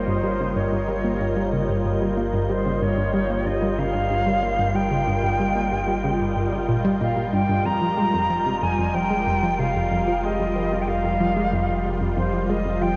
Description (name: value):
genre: ambient, sequencer-driven space music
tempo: 93 BPM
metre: 4/4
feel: straight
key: unclear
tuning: A4 = 441 Hz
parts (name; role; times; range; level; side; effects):
- silver concert flute; melody; 0.0-13.0 s; C5 to Bb5; -28 LUFS; equal; analog delay
- lush unison pad; sustained chords; 0.0-13.0 s; G3 to Eb5; -28 LUFS; equal; chorus, phaser
- analog pluck; riff; 0.0-12.9 s; F2 to Bb3; -27 LUFS; equal; chorus, analog delay
- warm sub bass; bass; 0.0-13.0 s; F1 to G1; -34 LUFS; equal; none
- wind-like tuned noise texture; texture; 0.0-13.0 s; G3 to G6; -38 LUFS; equal; built-in reverb
room: wet huge ambient reverb, RT60 8.2 s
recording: worn, warbling old tape, cassette tape, warbly pitch drift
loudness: -23 LUFS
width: mono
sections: 0.0-13.0 A section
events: none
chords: 0.0 Gdim; 7.7 Fm7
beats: 0.56 1.20 1.85 | 2.49 3.14 3.78 4.43 | 5.07 5.72 6.36 7.01 | 7.65 8.30 8.95 9.59 | 10.23 10.88 11.53 12.17 | 12.82